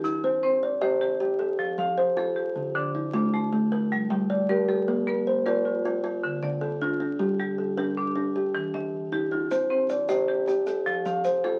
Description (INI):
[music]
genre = southern african traditional, mbira-style interlocking cycle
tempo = 104 BPM (dotted quarters)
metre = 12/8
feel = straight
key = C equiheptatonic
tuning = A4 = 441 Hz
[part]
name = kalimba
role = arpeggios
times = 0.0-11.6 s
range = D3-29c to Eb5+43c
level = -28 LUFS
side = equal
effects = none
[part]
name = marimba with hard mallets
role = arpeggios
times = 0.0-11.6 s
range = D3-29c to G5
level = -31 LUFS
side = equal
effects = none
[part]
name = maracas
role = percussion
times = 0.0-0.2, 9.5-11.4 s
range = none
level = -50 LUFS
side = equal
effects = none
[sound]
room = moderate studio ambience, RT60 0.5 s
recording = very old 78 rpm record, vinyl crackle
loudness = -26 LUFS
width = mono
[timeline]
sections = 0.2-11.6 A section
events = none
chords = 0.2 Cm; 1.4 F; 2.6 Dm; 3.7 Gm; 4.9 Bb; 6.0 Dm; 7.2 Gm; 8.4 Eb; 9.5 Cm; 10.7 F